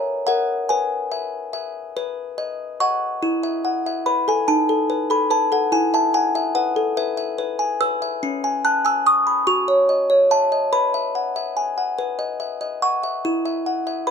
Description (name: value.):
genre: classical, lullaby for music box.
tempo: 48 BPM (dotted quarters).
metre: 6/8.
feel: straight.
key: E major.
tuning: A4 = 440 Hz.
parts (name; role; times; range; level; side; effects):
music box; solo; 0.0-14.1 s; C#4 to F#6; -18 LUFS; left 1 dB; none.
room: moderate studio reverb, RT60 0.6 s.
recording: dark, warm production.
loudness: -18 LUFS.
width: side -6 dB against mid.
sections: 0.0-3.2 A section; 3.2-14.1 B section.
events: none.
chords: 0.0 A#dim; 0.7 E/B; 2.0 B; 3.2 E5; 4.5 B7/D#; 5.7 E; 8.2 C#5; 9.5 F#5; 10.7 E/B; 12.0 B; 13.2 E5.